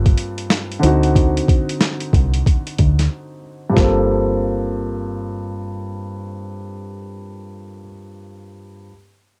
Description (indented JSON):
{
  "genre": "hip hop, boom-bap hip-hop",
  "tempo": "92 BPM",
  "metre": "4/4",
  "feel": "swing 63% on 16ths",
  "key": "G minor",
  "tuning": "A4 = 442 Hz",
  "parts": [
    { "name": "warm grand piano", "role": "accompaniment", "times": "0.0-8.9 s", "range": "G2 to A4", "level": "-24 LUFS", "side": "equal", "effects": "cassette tape, high-pass filter, low-pass filter" },
    { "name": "deep dub fingered electric bass", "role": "bass", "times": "0.0-7.8 s", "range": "G1 to D2", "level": "-21 LUFS", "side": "equal", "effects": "none" },
    { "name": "boom bap sampler-style drum kit", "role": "drums", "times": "0.1-4.0 s", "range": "hi-hat, kick drum, snare drum", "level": "-19 LUFS", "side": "equal", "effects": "cassette tape" }
  ],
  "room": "little or no reverb",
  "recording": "home recording on cassette",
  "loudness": "-18 LUFS",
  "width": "mono",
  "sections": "0.0-3.8 A section; 3.8-6.4 B section",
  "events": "filter sweep on grand piano 0.0-3.8; break 3.1-3.8",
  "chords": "0.0 Gm11; 0.8 D7b9; 3.8 Gm11",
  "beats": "0.50 | 1.16 1.81 2.46 3.11 | 3.77 4.42 5.07 5.72"
}